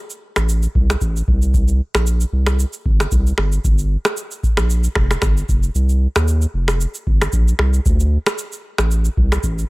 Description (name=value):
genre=afrobeats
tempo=114 BPM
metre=4/4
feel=swing 55% on 16ths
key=C dorian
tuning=A4 = 441 Hz
part: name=booming analog drum machine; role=drums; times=0.1-9.7 s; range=finger snaps, kick drum, rim click, shaker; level=-18 LUFS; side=equal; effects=none
part: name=saturated sub bass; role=bass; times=0.4-9.6 s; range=F1 to Eb2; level=-17 LUFS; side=equal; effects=none
room=digital ambience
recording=none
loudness=-15 LUFS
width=side -22 dB against mid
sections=0.0-9.7 A section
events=kick muted 5.8-6.3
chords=none